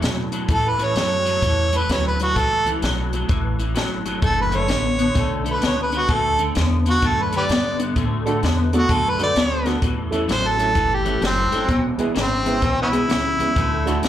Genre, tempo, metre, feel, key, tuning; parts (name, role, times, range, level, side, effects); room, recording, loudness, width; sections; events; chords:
electric blues shuffle; 128 BPM; 4/4; swing 65% on 8ths; A mixolydian; A4 = 438 Hz
electric guitar through a small old amp; riff; 0.0-14.1 s; E2 to B3; -23 LUFS; left 1 dB; ensemble chorus, slapback echo
upright bass; bass; 0.0-14.1 s; E1 to B2; -25 LUFS; equal
compact cocktail drum kit; drums; 0.0-14.1 s; hi-hat, kick drum, snare drum; -25 LUFS; equal
clear harmonica; melody; 0.5-14.1 s; B3 to D5; -21 LUFS; right 1 dB; overdrive, plate reverb, slapback echo
dark concert grand piano; accompaniment; 8.3-13.9 s; G#3 to B4; -26 LUFS; right 4 dB; plate reverb, slapback echo
light reverb; live gig heard through the venue's PA, club reverb; -18 LUFS; side -11 dB against mid
0.0-14.1 A section
0.0 A; 4.2 D; 9.8 A; 11.7 E; 13.6 D